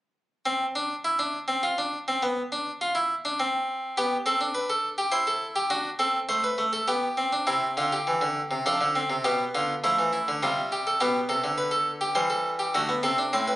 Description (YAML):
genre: classical, baroque-style 3-part fugue for harpsichord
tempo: 103 BPM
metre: 3/4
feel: straight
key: C major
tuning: A4 = 441 Hz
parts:
  - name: harpsichord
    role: solo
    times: 0.5-13.6 s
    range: A2 to C5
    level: -24 LUFS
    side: equal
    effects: none
room: light reverb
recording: recorded on a phone in the room, club reverb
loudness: -24 LUFS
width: side -16 dB against mid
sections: 0.5-7.5 A section; 7.5-13.6 B section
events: none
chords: 0.5 N.C.; 4.0 G/B; 5.1 C/E; 5.7 D7; 6.9 G/B; 7.5 C; 8.7 F; 9.3 G7/B; 10.4 C5; 11.0 G/B; 12.2 C/E; 12.7 D7